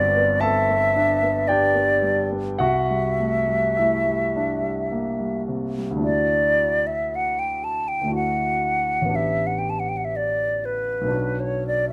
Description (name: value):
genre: classical, impressionist duo for flute and grand piano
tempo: 50-61 BPM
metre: 3/4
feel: rubato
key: D mixolydian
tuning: A4 = 440 Hz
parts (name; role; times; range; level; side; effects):
- hollow concert flute; melody; 0.0-11.9 s; B4 to A5; -24 LUFS; equal; none
- warm grand piano; accompaniment; 0.0-11.9 s; G1 to A5; -27 LUFS; equal; none
room: light reverb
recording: close, detailed microphones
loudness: -22 LUFS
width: mono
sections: 0.0-6.0 A section; 6.0-11.9 B section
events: none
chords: 0.0 Gmaj7; 2.6 C9; 6.0 Dadd9; 9.2 A9sus4; 11.1 Bmadd9